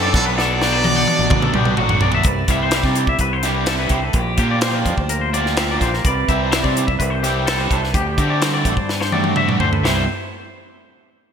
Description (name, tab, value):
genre	math rock and midwest emo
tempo	127 BPM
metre	4/4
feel	straight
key	C lydian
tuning	A4 = 440 Hz
part	brilliant trumpet	melody	0.0-1.7 s	A4 to D5	-21 LUFS	equal	none
part	twangy electric guitar	arpeggios	0.0-10.1 s	F#4 to F#5	-22 LUFS	left 4 dB	wide subtle chorus, ping-pong delay
part	overdriven electric guitar	riff	0.0-10.0 s	B2 to F#4	-24 LUFS	right 1 dB	none
part	growling fingered electric bass	bass	0.0-10.1 s	A1 to D3	-22 LUFS	equal	overdrive
part	crisp fusion drum kit	drums	0.1-10.0 s	hi-hat, kick drum, ride cymbal, snare drum, toms	-20 LUFS	equal	gated reverb
part	electric guitar through a small old amp	accompaniment	2.3-10.1 s	G2 to D5	-25 LUFS	right 4 dB	wide subtle chorus
room	moderate lush hall reverb, RT60 2.0 s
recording	bright 1980s-style digital production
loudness	-15 LUFS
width	side -7 dB against mid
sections	0.0-2.3 A section; 2.3-9.8 B section; 9.8-11.3 C section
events	drum fill 0.4-2.3, 8.9-9.8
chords	0.1 Bm7; 2.3 Cmaj7; 4.2 Bb6; 6.0 Cmaj7; 7.9 D7sus4; 9.8 Cmaj7